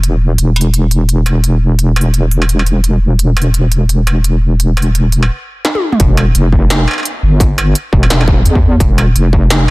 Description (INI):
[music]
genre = half-time drum and bass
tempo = 171 BPM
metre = 4/4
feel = swing 58% on 16ths, half-time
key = E phrygian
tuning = A4 = 438 Hz
[part]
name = deep soft wobble bass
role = bass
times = 0.0-9.7 s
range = E1 to E2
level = -10 LUFS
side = equal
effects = chorus
[part]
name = industrial drum kit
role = drums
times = 0.0-9.7 s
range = hi-hat, snare drum, struck metal, toms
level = -17 LUFS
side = right 1 dB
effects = overdrive
[part]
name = electronic kick drum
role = drums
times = 6.0-9.4 s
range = none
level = -12 LUFS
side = equal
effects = distortion, overdrive
[sound]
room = little or no reverb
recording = dense, heavily limited modern master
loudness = -9 LUFS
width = side -22 dB against mid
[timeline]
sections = 0.0-6.0 A section; 6.0-9.7 B section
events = stop 5.3-6.0; drum fill 5.6-6.0; drop 6.0-9.7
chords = none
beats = 0.03 | 0.39 0.74 1.09 1.44 | 1.79 2.14 2.49 2.84 | 3.19 3.54 3.89 4.25 | 4.60 4.95 5.30 5.65 | 6.00 6.35 6.70 7.05 | 7.40 7.75 8.10 8.46 | 8.81 9.16 9.51